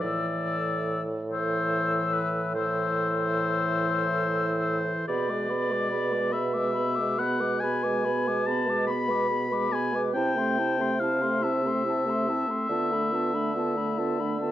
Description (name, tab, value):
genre	classical, slow romantic movement for wind quintet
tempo	47 BPM (dotted quarters)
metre	12/8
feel	rubato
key	A minor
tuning	A4 = 442 Hz
part	concert flute	melody	0.0-14.5 s	A5 to E6	-33 LUFS	left 6 dB	none
part	clear oboe	second line	0.0-14.5 s	B4 to B5	-29 LUFS	left 2 dB	none
part	dark clarinet	accompaniment	0.0-14.5 s	C4 to B4	-34 LUFS	right 5 dB	none
part	warm French horn	accompaniment	0.0-14.5 s	E3 to C4	-32 LUFS	equal	none
part	mellow bassoon	bass	0.0-14.5 s	A2 to D3	-30 LUFS	right 2 dB	none
room	moderate recital hall reverb, RT60 1.5 s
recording	worn, warbling old tape, cassette tape, warbly pitch drift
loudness	-24 LUFS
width	side -12 dB against mid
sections	0.0-14.5 A section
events	none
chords	0.0 Am; 5.1 G#dim/B; 10.1 Am/C; 12.7 Bm7b5/D